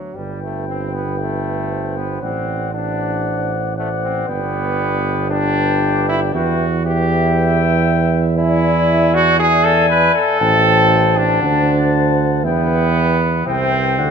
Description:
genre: classical, brass quintet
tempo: 117 BPM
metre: 4/4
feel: straight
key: G major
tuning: A4 = 440 Hz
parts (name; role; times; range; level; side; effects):
- brilliant trombone; accompaniment; 0.0-14.1 s; F#3 to B4; -18 LUFS; equal; none
- mellow trumpet; melody; 0.2-14.1 s; F#5 to A5; -24 LUFS; left 11 dB; none
- mellow flugelhorn; second line; 0.2-14.1 s; B4 to G5; -26 LUFS; right 6 dB; none
- mellow French horn; accompaniment; 0.2-14.1 s; A4 to D5; -24 LUFS; left 3 dB; none
- mellow tuba; bass; 0.2-14.1 s; G1 to E2; -18 LUFS; right 4 dB; none
room: wet recital hall reverb, RT60 1.9 s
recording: none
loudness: -14 LUFS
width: side -6 dB against mid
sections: 0.2-14.1 A section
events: none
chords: 0.2 G; 2.2 D7/A; 4.3 G; 6.3 Em; 8.4 E7; 10.4 Am7; 11.4 D7; 12.4 Em; 13.5 C

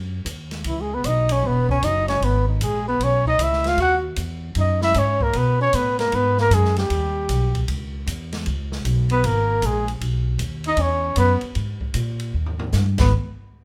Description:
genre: jazz, small-group swing and bop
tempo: 154 BPM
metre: 4/4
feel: swing 65% on 8ths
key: G# minor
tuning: A4 = 440 Hz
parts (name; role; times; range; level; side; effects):
- upright bass; bass; 0.0-13.1 s; E1 to B2; -24 LUFS; equal; none
- open jazz drum kit; drums; 0.3-13.0 s; crash cymbal, hi-hat, kick drum, ride cymbal, snare drum, toms; -32 LUFS; equal; none
- breathy trumpet; melody; 0.7-13.1 s; D#4 to F#5; -24 LUFS; equal; none
- mellow tenor saxophone; second line; 0.7-13.1 s; D#3 to F#4; -29 LUFS; equal; none
room: light reverb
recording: none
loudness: -21 LUFS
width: mono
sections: 0.0-13.1 A section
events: drum fill 12.3-12.7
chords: 0.0 G#7(no3) (rootless); 0.7 C#m7; 3.8 G#m7; 6.9 D#7b9; 8.5 C#5; 10.0 B; 10.8 C#m; 11.6 G#sus2; 12.3 D#; 12.9 G#m; 13.1 N.C.

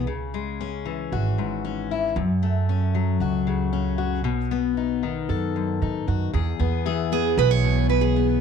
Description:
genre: acoustic folk duo or small band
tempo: 115 BPM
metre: 4/4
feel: straight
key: E major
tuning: A4 = 440 Hz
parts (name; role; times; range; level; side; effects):
- fingerpicked steel-string acoustic guitar; accompaniment; 0.0-8.4 s; E2 to A4; -25 LUFS; left 10 dB; none
- upright bass; bass; 0.0-8.4 s; G#1 to G#2; -24 LUFS; right 3 dB; none
- picked steel-string acoustic guitar; melody; 7.1-8.3 s; G#4 to C#5; -22 LUFS; right 17 dB; tape echo
room: moderate spring reverb, RT60 1.3 s, small room ambience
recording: 1960s-style stereo with parts hard left and right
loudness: -21 LUFS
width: side -6 dB against mid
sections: 0.0-6.3 A section; 6.3-8.4 B section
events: steel-string acoustic guitar solo 6.3-8.4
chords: 0.1 C#m; 2.2 F#m; 4.2 B; 6.3 E

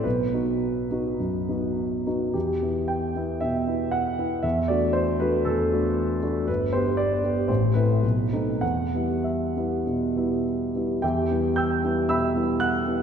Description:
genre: classical, romantic character piece for solo piano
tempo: 95-122 BPM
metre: 4/4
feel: rubato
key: E minor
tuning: A4 = 438 Hz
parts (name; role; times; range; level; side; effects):
- warm grand piano; solo; 0.0-13.0 s; G1 to G6; -22 LUFS; equal; none
room: wet scoring stage reverb, RT60 1.8 s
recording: minimal, uncompressed stereo recording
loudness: -22 LUFS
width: side -7 dB against mid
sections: 0.0-11.0 A section; 11.0-13.0 A section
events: none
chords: 0.0 B; 2.3 Em; 4.4 D/E; 6.5 G; 7.5 Am; 8.0 B7b9; 8.6 Em

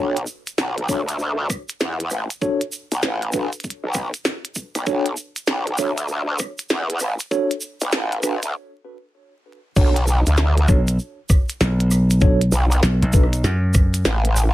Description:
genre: glitch hop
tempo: 98 BPM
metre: 4/4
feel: swing 64% on 16ths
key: B minor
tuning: A4 = 439 Hz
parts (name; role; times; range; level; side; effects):
- mellow tine electric piano; stabs; 0.0-13.2 s; D4 to C#5; -25 LUFS; equal; medium stereo tremolo, sidechain pumping, low-pass filter, tape echo
- growl bass; bass; 0.0-14.5 s; A1 to E2; -20 LUFS; equal; chorus, tube saturation, high-pass filter
- glitchy drum kit; drums; 0.2-14.3 s; crash cymbal, hi-hat, rim click, snare drum; -24 LUFS; equal; none
- tube shaker; percussion; 0.3-14.5 s; none; -31 LUFS; right 3 dB; none
- electronic kick drum; drums; 0.9-13.9 s; none; -17 LUFS; equal; high-pass filter on kick
- slap bass; bass; 10.7-14.0 s; B1 to F#2; -17 LUFS; equal; none
room: little or no reverb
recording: vinyl crackle, high-pass filter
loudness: -18 LUFS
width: side -15 dB against mid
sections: 0.0-9.8 A section; 9.8-14.5 B section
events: build-up 0.0-9.8; filter sweep on tine electric piano 0.0-9.8; break 8.5-9.8; drop 9.8-14.5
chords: 0.0 Bm9; 9.8 Bm7

